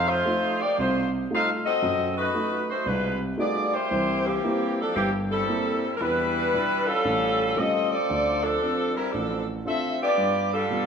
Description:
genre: jazz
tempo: 115 BPM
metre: 4/4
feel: swing 66% on 8ths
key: unclear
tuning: A4 = 440 Hz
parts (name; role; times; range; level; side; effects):
- mellow saxophone section; melody; 0.0-10.9 s; E3 to F5; -23 LUFS; left 1 dB; none
- warm grand piano; accompaniment; 0.0-10.9 s; G1 to F#4; -28 LUFS; right 1 dB; none
room: wet recital hall reverb, RT60 1.6 s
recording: none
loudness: -22 LUFS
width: side -6 dB against mid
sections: 0.0-10.9 A section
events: none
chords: 0.0 F7; 1.8 F#dim7; 3.9 C7; 6.0 Em7; 7.0 A7alt; 8.1 Dm7; 10.2 G7

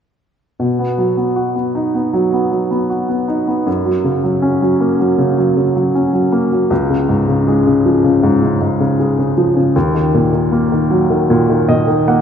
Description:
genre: pop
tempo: 79 BPM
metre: 4/4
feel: straight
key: unclear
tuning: A4 = 440 Hz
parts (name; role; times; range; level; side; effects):
- clear baby grand piano; accompaniment; 0.6-12.2 s; Db2 to Gb5; -12 LUFS; equal; none
room: wet lush hall reverb, RT60 2.3 s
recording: rough home demo mix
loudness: -12 LUFS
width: side -8 dB against mid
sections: 0.6-12.2 A section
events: grand piano fill 11.3-12.2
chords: 0.6 B; 3.7 Gb; 6.7 Db; 9.8 Ebm

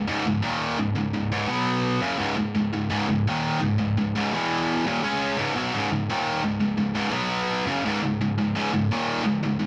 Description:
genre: metal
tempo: 85 BPM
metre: 4/4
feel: straight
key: C# minor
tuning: A4 = 440 Hz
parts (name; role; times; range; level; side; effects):
- high-gain distorted guitar; solo; 0.0-9.7 s; C#2 to C#4; -25 LUFS; equal; distortion
room: little or no reverb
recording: dry, close 1970s-style studio recording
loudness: -25 LUFS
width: mono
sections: 0.0-5.7 A section; 5.7-9.7 B section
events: none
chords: 0.0 C#m; 5.7 C#5

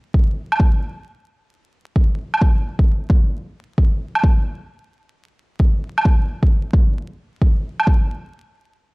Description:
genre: future garage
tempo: 132 BPM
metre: 4/4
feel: swing 65% on 16ths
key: none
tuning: none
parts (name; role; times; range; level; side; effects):
- electronic kick drum; drums; 0.1-8.0 s; none; -15 LUFS; equal; overdrive
- woodblock; drums; 0.5-7.9 s; none; -20 LUFS; right 1 dB; overdrive
room: little or no reverb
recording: dry, gritty hardware recording, vinyl crackle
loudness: -16 LUFS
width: side -28 dB against mid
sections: 0.0-8.9 A section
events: none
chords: none

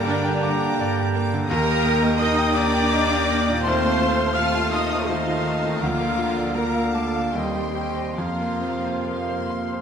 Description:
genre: classical, romantic movement for piano and orchestra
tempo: 68-86 BPM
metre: 3/4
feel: rubato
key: unclear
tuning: A4 = 441 Hz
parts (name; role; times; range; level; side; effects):
- clear baby grand piano; melody; 0.0-9.8 s; D2 to Eb6; -27 LUFS; left 2 dB; none
- rich studio violin section; melody; 0.0-9.8 s; D5 to F6; -34 LUFS; left 4 dB; none
- bright clarinet; second line; 0.0-9.8 s; G3 to D4; -30 LUFS; left 1 dB; none
- mellow silver concert flute; second line; 0.0-9.8 s; D5 to F6; -31 LUFS; left 3 dB; none
- warm studio violin section; second line; 0.0-9.8 s; G5 to Eb6; -34 LUFS; left 2 dB; none
- rich studio viola section; accompaniment; 0.0-9.8 s; D4 to F5; -27 LUFS; right 1 dB; none
- clear trombone section; sustained chords; 0.0-9.8 s; C3 to Bb3; -31 LUFS; right 4 dB; none
- warm French horn section; sustained chords; 0.0-9.8 s; Bb3 to G4; -31 LUFS; left 4 dB; none
- clear trumpet section; stabs; 0.0-9.8 s; Eb5 to Bb5; -31 LUFS; right 2 dB; none
- rich studio cello section; bass; 0.0-9.8 s; D3 to F4; -29 LUFS; right 2 dB; none
- rich studio double bass section; bass; 0.0-9.8 s; D2 to G2; -30 LUFS; right 4 dB; none
- clear oboe; second line; 0.1-9.8 s; F5 to C6; -34 LUFS; equal; none
room: wet concert hall reverb, RT60 1.8 s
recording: none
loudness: -20 LUFS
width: side -7 dB against mid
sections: 0.0-9.8 A section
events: none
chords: 0.0 Gm; 1.5 Eb; 3.6 F7/Eb; 5.8 Bb/D; 7.3 Cm/Eb; 8.2 Fsus4

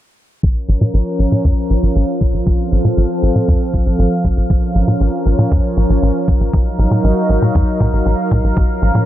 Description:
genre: synthwave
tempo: 118 BPM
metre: 4/4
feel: straight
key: Bb harmonic minor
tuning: A4 = 440 Hz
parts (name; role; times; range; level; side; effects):
- lush unison pad; sustained chords; 0.4-9.1 s; F3 to F5; -18 LUFS; equal; chorus, sidechain pumping
- tight sequencer bass; bass; 0.4-9.0 s; Bb1 to Bb2; -14 LUFS; equal; sidechain pumping
- electronic kick drum; drums; 0.4-8.7 s; none; -16 LUFS; equal; none
room: little or no reverb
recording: low-pass filter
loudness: -13 LUFS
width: side -13 dB against mid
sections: 0.4-9.1 A section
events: filter sweep on analog synth bass 0.4-9.1; filter sweep 0.4-9.1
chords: 0.4 Bbm; 2.5 F/Bb; 4.5 Bbm; 6.5 Ebmadd9/Bb

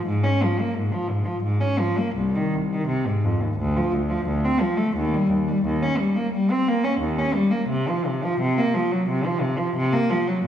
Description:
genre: classical, baroque-style suite movement for unaccompanied cello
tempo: 87 BPM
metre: 4/4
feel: rubato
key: unclear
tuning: A4 = 440 Hz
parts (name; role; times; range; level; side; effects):
- rich cello; solo; 0.0-10.4 s; C2 to Db4; -20 LUFS; equal; none
room: wet recital hall reverb, RT60 1.6 s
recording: heard from further back in the room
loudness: -20 LUFS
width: side -10 dB against mid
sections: 0.0-10.5 A section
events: none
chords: none

